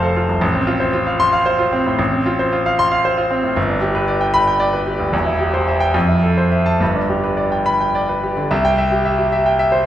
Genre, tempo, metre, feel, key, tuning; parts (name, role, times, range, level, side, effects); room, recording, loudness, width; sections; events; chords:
classical, virtuoso piano study; 69-78 BPM (dotted quarters); 6/8; rubato; C major; A4 = 440 Hz
clear concert grand piano; solo; 0.0-9.9 s; E1 to C6; -14 LUFS; equal
wet recital hall reverb, RT60 1.5 s; heard from further back in the room; -14 LUFS; side -12 dB against mid
0.0-8.5 A section; 8.5-9.9 B section
0.4 F/A; 3.6 G; 5.1 C/E; 5.9 Fmaj7; 6.8 G; 8.5 C